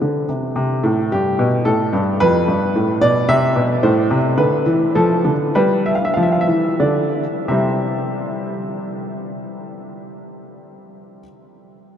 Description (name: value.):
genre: classical, baroque-style two-part invention for grand piano.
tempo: 84-112 BPM.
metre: 3/4.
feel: straight.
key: C major.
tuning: A4 = 439 Hz.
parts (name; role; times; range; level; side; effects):
warm baby grand piano; solo; 0.0-11.2 s; F2 to F5; -16 LUFS; equal; none.
room: wet huge ambient reverb, RT60 8.5 s.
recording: in a vast, echoing space.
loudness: -15 LUFS.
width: side -9 dB against mid.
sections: 0.6-7.5 A section; 7.5-11.8 B section.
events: slowing down 3.0-7.5.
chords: 0.0 N.C.; 0.6 C5; 1.7 Gsus2; 2.2 G7/F; 3.3 C; 3.8 Amadd9; 4.9 F; 5.5 G7; 7.5 C.